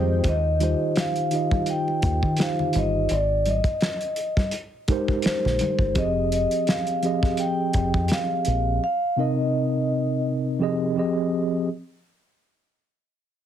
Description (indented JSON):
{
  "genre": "R&B, neo-soul",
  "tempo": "84 BPM",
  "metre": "4/4",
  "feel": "swing 56% on 16ths",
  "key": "F minor",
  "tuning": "A4 = 440 Hz",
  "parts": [
    { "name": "vibraphone with soft mallets", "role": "melody", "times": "0.0-10.2 s", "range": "C5 to G5", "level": "-26 LUFS", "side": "equal", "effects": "none" },
    { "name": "mellow tine electric piano", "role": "accompaniment", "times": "0.0-11.7 s", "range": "C3 to Eb5", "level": "-24 LUFS", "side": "right 1 dB", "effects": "medium stereo tremolo" },
    { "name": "deep dub fingered electric bass", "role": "bass", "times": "0.0-8.8 s", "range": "F1 to Eb3", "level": "-24 LUFS", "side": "equal", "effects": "none" },
    { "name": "cloth-damped thuddy drum kit", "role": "drums", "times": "0.2-8.6 s", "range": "hi-hat, kick drum, snare drum", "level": "-25 LUFS", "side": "equal", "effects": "none" },
    { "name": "congas", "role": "percussion", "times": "0.6-5.8 s", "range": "none", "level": "-32 LUFS", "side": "left 2 dB", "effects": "none" }
  ],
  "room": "light reverb",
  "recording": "heavily compressed radio sound, multiband compression",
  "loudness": "-21 LUFS",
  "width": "side -10 dB against mid",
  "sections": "0.2-11.7 A section",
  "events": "break 0.0",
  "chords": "0.2 Eb69; 3.1 Abmaj9; 6.0 Fm7; 8.8 Cm7; 11.0 Fm9",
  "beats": "| 0.24 0.96 1.67 2.39 | 3.10 3.82 4.53 5.25 | 5.96 6.67 7.39 8.10 | 8.82 9.53 10.24 10.96"
}